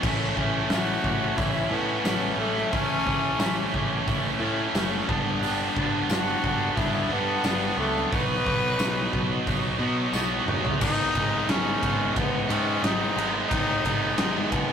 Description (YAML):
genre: classic rock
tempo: 89 BPM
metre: 4/4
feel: straight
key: unclear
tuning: A4 = 440 Hz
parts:
  - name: crunchy overdriven guitar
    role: riff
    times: 0.0-14.7 s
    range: G2 to E4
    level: -32 LUFS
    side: left 6 dB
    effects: none
  - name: distorted electric guitar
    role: riff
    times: 0.0-14.7 s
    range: G2 to E4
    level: -31 LUFS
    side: left 1 dB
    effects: overdrive
  - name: tight distorted guitar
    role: riff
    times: 0.0-14.7 s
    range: G2 to E4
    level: -29 LUFS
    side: right 6 dB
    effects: distortion
  - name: growling picked electric bass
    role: bass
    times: 0.0-14.7 s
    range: F#1 to B2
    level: -33 LUFS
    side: equal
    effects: overdrive
  - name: big rock drum kit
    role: drums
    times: 0.0-14.7 s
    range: crash cymbal, hi-hat, kick drum, ride cymbal, snare drum, toms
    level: -28 LUFS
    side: equal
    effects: none
  - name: growling tenor saxophone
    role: melody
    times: 0.7-14.7 s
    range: G#3 to B4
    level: -29 LUFS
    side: left 2 dB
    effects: none
  - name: tambourine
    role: percussion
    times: 0.7-10.3 s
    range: none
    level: -42 LUFS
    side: left 8 dB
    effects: none
room: moderate stone room reverb, RT60 1.3 s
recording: rough rehearsal-room recording, tube saturation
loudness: -22 LUFS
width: side -8 dB against mid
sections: 0.0-10.8 A section; 10.8-14.7 B section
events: tenor saxophone solo 0.0-10.8; drum fill 10.1-10.8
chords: 0.0 A; 5.1 G; 8.1 B; 10.8 G#m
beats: | 0.03 0.70 1.38 2.05 | 2.73 3.40 4.08 4.75 | 5.43 6.10 6.77 7.45 | 8.12 8.80 9.47 10.14 | 10.82 11.49 12.16 12.84 | 13.51 14.19